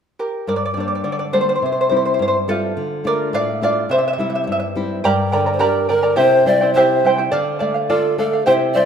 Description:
andean folk; 105 BPM; 2/4; straight; A4 = 440 Hz
charango; accompaniment; 0.2-8.9 s; E4 to Bb5; -18 LUFS; right 1 dB
nylon-string guitar; accompaniment; 0.5-8.9 s; G2 to G4; -22 LUFS; left 1 dB
polished pan flute; melody; 5.5-8.9 s; A4 to D5; -16 LUFS; equal
moderate scoring stage reverb, RT60 1.9 s; minimal, uncompressed stereo recording; -15 LUFS; side -7 dB against mid
0.5-5.0 A section; 5.0-8.9 B section
charango solo 0.5-5.0
0.5 Gm; 1.6 C; 2.8 Dm; 3.9 C; 5.0 Gm; 6.2 C; 7.3 Dm
| 0.47 1.04 | 1.61 2.19 | 2.76 3.33 | 3.90 4.47 | 5.04 5.61 | 6.18 6.75 | 7.32 7.89 | 8.46

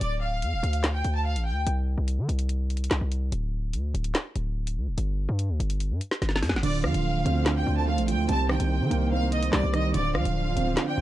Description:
hip hop, drill; 145 BPM; 4/4; half-time; D phrygian; A4 = 440 Hz
bright studio violin section; melody; 0.0-1.6, 6.6-11.0 s; D5 to A5; -30 LUFS; right 1 dB; slapback echo
distorted 808-style bass; bass; 0.0-11.0 s; D1 to Eb3; -26 LUFS; equal; distortion
drill drum kit; drums; 0.0-10.9 s; crash cymbal, handclaps, hi-hat, rim click, snare drum; -29 LUFS; left 1 dB
felt-muted upright piano; accompaniment; 6.6-11.0 s; C3 to D4; -28 LUFS; right 6 dB
dark studio string section; sustained chords; 6.6-11.0 s; C3 to C5; -34 LUFS; left 2 dB
little or no reverb; dark, warm production; -24 LUFS; side -14 dB against mid
0.0-6.6 A section; 6.6-11.0 B section
drum fill 6.2-6.6
0.0 Dm; 1.7 N.C.; 5.0 G5; 6.6 Dm7; 8.3 Cm7; 9.9 Dm7
| 0.01 0.42 0.84 1.25 | 1.67 2.08 2.49 2.91 | 3.32 3.74 4.15 4.56 | 4.98 5.39 5.80 6.22 | 6.63 7.05 7.46 7.87 | 8.29 8.70 9.12 9.53 | 9.94 10.36 10.77

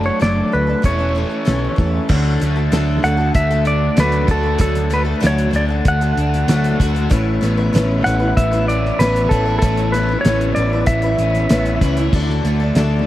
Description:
folk rock and heartland rock; 96 BPM; 4/4; straight; D major; A4 = 440 Hz
clean lap steel guitar; melody; 0.0-11.8 s; A4 to F#5; -20 LUFS; equal; analog delay
picked twelve-string acoustic guitar; accompaniment; 0.0-13.1 s; D3 to B4; -24 LUFS; left 3 dB; analog delay
mellow tonewheel organ; sustained chords; 0.0-13.1 s; D4 to B5; -33 LUFS; equal; slow rotary speaker
crunchy overdriven guitar; riff; 0.0-13.1 s; A2 to F#4; -22 LUFS; equal
picked electric bass; bass; 0.0-13.0 s; E1 to E2; -19 LUFS; equal
cloth-damped thuddy drum kit; drums; 0.2-12.9 s; crash cymbal, hi-hat, kick drum, snare drum; -19 LUFS; equal; analog delay
light reverb, small room reverb; echo-heavy mix, vinyl crackle; -14 LUFS; side -14 dB against mid
0.0-2.1 A section; 2.1-13.1 B section
0.0 D/F#; 0.8 A/E; 2.1 D; 7.1 Aadd9; 12.1 D
0.21 0.84 1.47 | 2.09 2.72 3.35 3.98 | 4.60 5.23 5.86 6.48 | 7.11 7.74 8.36 8.99 | 9.62 10.24 10.87 11.50 | 12.13 12.76

